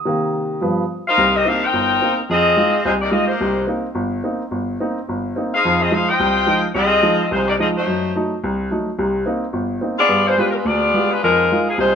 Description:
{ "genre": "jazz", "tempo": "215 BPM", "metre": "4/4", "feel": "swing 59% on 8ths", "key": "C minor", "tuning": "A4 = 440 Hz", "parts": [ { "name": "warm upright piano", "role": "accompaniment", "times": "0.1-11.9 s", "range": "G1 to G4", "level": "-20 LUFS", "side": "equal", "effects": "none" }, { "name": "bright saxophone section", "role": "melody", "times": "1.1-11.9 s", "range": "F3 to G5", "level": "-16 LUFS", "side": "left 2 dB", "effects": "none" } ], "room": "moderate stone room reverb, RT60 1.0 s", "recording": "band playing live in one room", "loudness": "-16 LUFS", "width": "side -7 dB against mid", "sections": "0.0-1.2 A section; 1.2-11.9 B section", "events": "upright piano solo 0.0-1.2", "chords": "0.0 Cm7; 0.6 G7; 1.2 Cm7; 2.3 Fm7; 3.4 Cm7; 5.6 Fm7; 7.9 F#dim7; 9.0 Cm7; 10.1 G7b9; 11.2 Fm7", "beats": "| 0.06 0.34 0.62 0.90 | 1.18 1.45 1.73 2.01 | 2.29 2.57 2.85 3.12 | 3.40 3.68 3.96 4.24 | 4.52 4.79 5.07 5.35 | 5.63 5.91 6.19 6.47 | 6.75 7.03 7.30 7.58 | 7.86 8.14 8.42 8.70 | 8.98 9.26 9.54 9.82 | 10.10 10.38 10.66 10.94 | 11.22 11.50 11.78" }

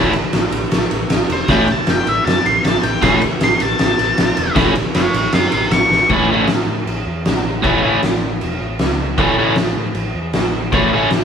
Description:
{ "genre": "garage rock duo or trio", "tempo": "156 BPM", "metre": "4/4", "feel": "straight", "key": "A major", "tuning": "A4 = 442 Hz", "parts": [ { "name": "crunchy overdriven guitar", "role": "riff", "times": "0.0-11.1 s", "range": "A2 to E4", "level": "-16 LUFS", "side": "equal", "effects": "none" }, { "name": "hollow-body short-scale picked electric bass", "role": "bass", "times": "0.0-11.2 s", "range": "E1 to A2", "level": "-24 LUFS", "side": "equal", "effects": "none" }, { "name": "oversized low-tuned drum kit", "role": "drums", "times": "0.1-11.2 s", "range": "crash cymbal, kick drum, ride cymbal, snare drum", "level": "-17 LUFS", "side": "equal", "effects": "none" }, { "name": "octave-fuzz lead guitar", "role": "melody", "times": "1.3-6.1 s", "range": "C5 to C#6", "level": "-17 LUFS", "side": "left 1 dB", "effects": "distortion" } ], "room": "moderate stone room reverb, RT60 1.1 s", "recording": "band playing live in one room", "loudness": "-14 LUFS", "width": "side -7 dB against mid", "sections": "0.0-6.1 A section; 6.1-11.2 B section", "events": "lead electric guitar solo 0.0-6.1; drum fill 5.9", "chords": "0.0 A5; 6.1 A", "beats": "0.33 0.72 1.10 | 1.49 1.88 2.26 2.64 | 3.03 3.41 3.80 4.18 | 4.57 4.95 5.33 5.72 | 6.11 6.49 6.88 7.26 | 7.64 8.03 8.42 8.80 | 9.19 9.57 9.96 10.34 | 10.73 11.11" }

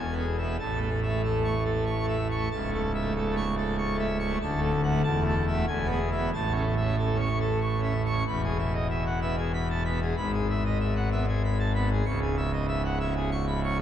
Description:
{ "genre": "classical, organ toccata", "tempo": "94 BPM", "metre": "3/4", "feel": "straight", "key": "A major, E major from 8.3 s", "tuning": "A4 = 440 Hz", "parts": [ { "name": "pipe organ, full organ", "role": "solo", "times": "0.0-13.8 s", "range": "C#1 to C#6", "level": "-25 LUFS", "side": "equal", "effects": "none" } ], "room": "wet cathedral reverb, RT60 6.4 s", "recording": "dark, warm production", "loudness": "-25 LUFS", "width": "side -10 dB against mid", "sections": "0.0-8.3 A section; 8.3-13.8 B section", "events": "none", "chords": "0.0 E; 0.6 A; 2.5 A/C#; 4.4 D; 5.0 A5/E; 5.7 E; 6.3 A; 8.3 E; 10.2 E/G#; 12.1 C#m", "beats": "| 0.59 1.23 1.87 | 2.51 3.15 3.77 | 4.40 5.04 5.68 | 6.32 6.97 7.61 | 8.26 8.89 9.53 | 10.16 10.79 11.43 | 12.06 12.68 13.31" }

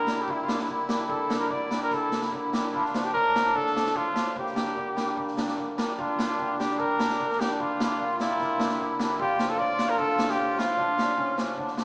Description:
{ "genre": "klezmer", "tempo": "148 BPM", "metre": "4/4", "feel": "straight", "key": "unclear", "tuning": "A4 = 439 Hz", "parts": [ { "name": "warm cornet", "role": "melody", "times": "0.0-11.8 s", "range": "E4 to D5", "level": "-27 LUFS", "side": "equal", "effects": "none" }, { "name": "accordion", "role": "second line", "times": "0.0-11.8 s", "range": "Bb3 to F4", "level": "-30 LUFS", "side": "equal", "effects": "light tremolo tuning" }, { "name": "hammered dulcimer", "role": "accompaniment", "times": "0.0-11.8 s", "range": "A2 to E4", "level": "-32 LUFS", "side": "equal", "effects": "none" }, { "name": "street-band drum kit", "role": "drums", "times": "0.1-11.8 s", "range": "kick drum, snare drum", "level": "-31 LUFS", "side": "equal", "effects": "none" } ], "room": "wet stone room reverb, RT60 1.4 s", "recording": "band playing live in one room, small speaker sound", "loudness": "-24 LUFS", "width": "side -28 dB against mid", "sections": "0.0-6.0 A section; 6.0-11.8 A section", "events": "speeding up 0.0-11.8", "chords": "0.0 Gm; 2.7 Dm; 4.4 Gm; 9.2 Dm", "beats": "0.28 0.69 | 1.10 1.51 1.92 2.33 | 2.74 3.15 3.55 3.96 | 4.37 4.77 5.18 5.58 | 5.99 6.39 6.79 7.20 | 7.60 8.00 8.40 8.80 | 9.20 9.60 9.99 10.39 | 10.79 11.18 11.58" }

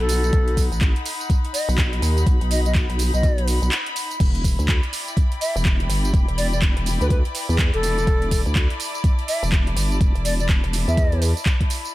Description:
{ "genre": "bass house", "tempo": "124 BPM", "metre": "4/4", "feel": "swing 61% on 16ths", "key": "E minor", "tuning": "A4 = 441 Hz", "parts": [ { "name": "hollow concert flute", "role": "melody", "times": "0.0-11.2 s", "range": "A4 to E5", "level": "-27 LUFS", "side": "left 1 dB", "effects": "digital delay" }, { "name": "vowel-sweep wobble bass", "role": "bass", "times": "0.0-11.3 s", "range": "E1 to E2", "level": "-21 LUFS", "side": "equal", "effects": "chorus, sidechain pumping" }, { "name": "rich chamber string section", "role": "texture", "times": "0.0-11.9 s", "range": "D#4 to B5", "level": "-31 LUFS", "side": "left 3 dB", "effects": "sidechain pumping" }, { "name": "garage drum kit", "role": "drums", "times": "0.1-11.9 s", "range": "crash cymbal, handclaps, hi-hat, tambourine", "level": "-27 LUFS", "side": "right 2 dB", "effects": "overdrive" }, { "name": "electronic kick drum", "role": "drums", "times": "0.3-11.7 s", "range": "none", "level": "-19 LUFS", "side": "equal", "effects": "overdrive" } ], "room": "little or no reverb", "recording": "none", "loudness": "-18 LUFS", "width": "side -17 dB against mid", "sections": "0.0-11.9 A section", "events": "break 3.7-4.2", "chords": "0.0 B; 4.2 Em7", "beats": "| 0.33 0.81 1.30 1.78 | 2.27 2.75 3.23 3.72 | 4.20 4.68 5.17 5.65 | 6.14 6.62 7.10 7.59 | 8.07 8.56 9.04 9.52 | 10.01 10.49 10.97 11.46 | 11.94" }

